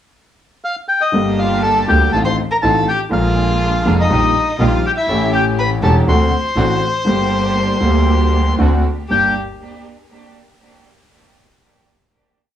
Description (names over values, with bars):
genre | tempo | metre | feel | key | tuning
tango | 121 BPM | 4/4 | rubato | G minor | A4 = 440 Hz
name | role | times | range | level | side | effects
bandoneon | melody | 0.6-9.3 s | Eb5 to C6 | -18 LUFS | left 2 dB | none
warm grand piano | accompaniment | 1.1-9.3 s | E1 to G4 | -18 LUFS | left 1 dB | none
warm symphonic string section | stabs | 1.1-9.3 s | A3 to Ab4 | -24 LUFS | right 4 dB | tape echo
clear double bass | bass | 1.1-9.3 s | E1 to D2 | -18 LUFS | right 1 dB | none
warm violin | second line | 1.4-9.3 s | Eb4 to C5 | -22 LUFS | left 4 dB | none
room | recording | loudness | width
moderate studio reverb, RT60 0.6 s | cassette tape, small room ambience | -13 LUFS | side -10 dB against mid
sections
0.0-1.1 pickup bar; 1.1-9.1 A section; 9.1-11.1 final chord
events
none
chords
0.0 N.C.; 1.1 Gm; 2.1 F7/A; 3.1 Bb7; 4.1 Eb/Bb; 5.1 A7; 6.1 D7; 7.1 Gm; 8.6 D7; 9.1 Gm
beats
0.15 0.65 | 1.14 1.65 2.15 2.64 | 3.13 3.62 4.11 4.61 | 5.10 5.59 6.08 6.58 | 7.07 7.57 8.07 8.59 | 9.10